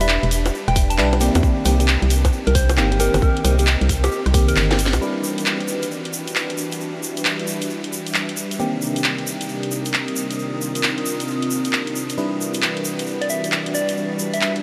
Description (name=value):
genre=UK garage, two-step garage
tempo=134 BPM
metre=4/4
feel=swing 64% on 16ths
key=unclear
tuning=A4 = 440 Hz
part: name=soft struck synth lead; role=melody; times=0.0-4.7, 13.2-14.5 s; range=G4 to A5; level=-29 LUFS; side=equal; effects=chorus, tape echo
part: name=FM electric piano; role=stabs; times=0.0-14.6 s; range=D#3 to B4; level=-28 LUFS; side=equal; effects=chorus, phaser, cassette tape, low-pass filter, tape echo
part: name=organ-like FM bass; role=bass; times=0.0-5.0 s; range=E1 to E2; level=-21 LUFS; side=equal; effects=none
part: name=garage drum kit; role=drums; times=0.0-14.6 s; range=bongos, handclaps, hi-hat, rim click, snare drum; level=-26 LUFS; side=equal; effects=studio reverb
part: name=tube shaker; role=percussion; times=0.0-14.5 s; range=none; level=-34 LUFS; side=equal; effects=none
part: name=ethereal airy pad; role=texture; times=0.1-14.6 s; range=G3 to Eb6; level=-32 LUFS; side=equal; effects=ensemble chorus, built-in reverb, sidechain pumping
part: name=electronic kick drum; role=drums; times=0.8-4.5 s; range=none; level=-21 LUFS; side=equal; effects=studio reverb
part: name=warm analog pad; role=sustained chords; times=5.0-14.6 s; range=C3 to B4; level=-31 LUFS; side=equal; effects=subtle chorus, sidechain pumping
room=moderate huge ambient reverb, RT60 8.2 s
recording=dreamy mix soaked in reverb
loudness=-20 LUFS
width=mono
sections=0.0-5.0 A section; 5.0-14.6 B section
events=drum fill 4.6-5.0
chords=0.0 Em7; 1.4 Cm7; 5.0 Em7; 8.6 Cm7; 12.2 Em7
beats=0.09 0.54 0.98 | 1.43 1.88 2.33 2.77 | 3.22 3.67 4.12 4.57 | 5.01 5.46 5.91 6.36 | 6.80 7.25 7.70 8.15 | 8.60 9.04 9.49 9.94 | 10.39 10.83 11.28 11.73 | 12.18 12.62 13.07 13.52 | 13.97 14.42